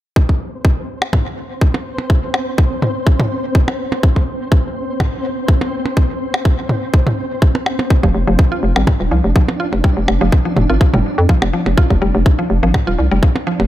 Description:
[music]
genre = minimal techno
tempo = 124 BPM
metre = 4/4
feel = swing 54% on 16ths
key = unclear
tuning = A4 = 440 Hz
[part]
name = electronic kick drum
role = drums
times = 0.2-13.3 s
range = none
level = -14 LUFS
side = equal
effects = none
[part]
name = flickering grainy texture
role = texture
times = 0.6-13.7 s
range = C4 to C5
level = -24 LUFS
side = equal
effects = built-in reverb, sidechain pumping
[part]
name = electronic percussion blips and toms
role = percussion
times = 1.0-13.7 s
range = none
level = -20 LUFS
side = right 1 dB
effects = dub echo
[part]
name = mallet-like synth pluck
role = riff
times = 8.0-13.5 s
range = F3 to F4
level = -21 LUFS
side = equal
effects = chorus, sidechain pumping, ping-pong delay
[part]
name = hollow knocking FM bass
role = bass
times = 8.0-13.7 s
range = Eb1 to F2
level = -15 LUFS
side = equal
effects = sidechain pumping
[sound]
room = light reverb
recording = none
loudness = -13 LUFS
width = side -14 dB against mid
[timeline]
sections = 0.2-13.7 A section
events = none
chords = 0.2 F5

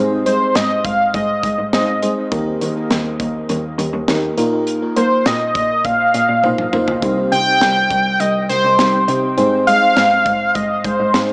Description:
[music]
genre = synth-pop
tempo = 102 BPM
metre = 4/4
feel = straight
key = unclear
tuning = A4 = 441 Hz
[part]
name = FM electric piano with soft pad layer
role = accompaniment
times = 0.0-11.3 s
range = Bb3 to C5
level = -23 LUFS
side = equal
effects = chorus, tremolo, dub echo
[part]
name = warm cello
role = bass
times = 0.0-11.3 s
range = C2 to Bb3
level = -24 LUFS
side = equal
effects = none
[part]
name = octave-doubled lead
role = melody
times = 0.3-11.3 s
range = C5 to G5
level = -18 LUFS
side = equal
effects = chorus, phaser, dub echo
[part]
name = modern studio drum kit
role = drums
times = 0.3-11.3 s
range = hi-hat, kick drum, snare drum, toms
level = -25 LUFS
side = equal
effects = none
[sound]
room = moderate spring reverb, RT60 2.5 s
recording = echo-heavy mix, small speaker sound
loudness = -16 LUFS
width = mono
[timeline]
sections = 0.0-11.3 A section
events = drum fill 6.4-7.0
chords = 0.0 Ab; 2.3 Eb; 4.4 Bbsus4; 7.0 Cm; 9.4 Ab

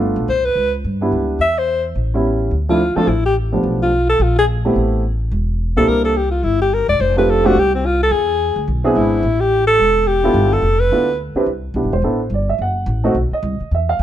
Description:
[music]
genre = jazz, small-group swing and bop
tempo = 214 BPM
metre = 4/4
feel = swing 60% on 8ths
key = C major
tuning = A4 = 440 Hz
[part]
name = dark upright piano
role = accompaniment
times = 0.0-14.0 s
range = F3 to F#5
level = -18 LUFS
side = right 1 dB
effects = none
[part]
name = upright bass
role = bass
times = 0.0-14.0 s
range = E1 to G2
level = -19 LUFS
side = equal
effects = none
[part]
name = breathy alto saxophone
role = melody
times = 0.3-11.2 s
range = C4 to E5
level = -16 LUFS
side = left 1 dB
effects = plate reverb
[sound]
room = light reverb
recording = nothing above 10.8 kHz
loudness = -14 LUFS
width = side -11 dB against mid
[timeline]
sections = 0.0-2.5 A section; 2.5-11.5 B section; 11.5-14.0 C section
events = none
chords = 0.3 Cmaj7; 2.0 A7; 2.5 Dm7; 3.6 Bm7b5; 4.2 Bbsus2; 4.8 Am9; 5.9 C7; 7.0 F69; 8.1 E7b13; 9.2 A5; 10.4 G13; 11.5 Cmaj7; 12.6 F#dim; 13.1 B

